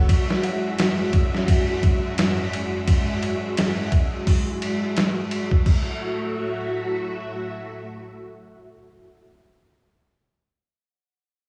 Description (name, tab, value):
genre	trip hop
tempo	86 BPM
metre	4/4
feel	swing 58% on 16ths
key	F# minor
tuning	A4 = 440 Hz
part	string machine, cellos	sustained chords	0.0-9.2 s	F#2 to E5	-28 LUFS	equal	phaser, ensemble chorus, vintage 12-bit sampler grit
part	trip hop sampler-style drum kit	drums	0.1-5.8 s	crash cymbal, hi-hat, kick drum, ride cymbal, snare drum	-23 LUFS	equal	none
room	light reverb, digital ambience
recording	small room ambience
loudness	-23 LUFS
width	mono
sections	0.0-5.7 A section; 5.7-8.5 B section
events	none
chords	0.1 Eadd9/F#; 5.7 F#m7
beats	| 0.08 0.78 1.48 2.18 | 2.87 3.57 4.27 4.97 | 5.66 6.36 7.06 7.76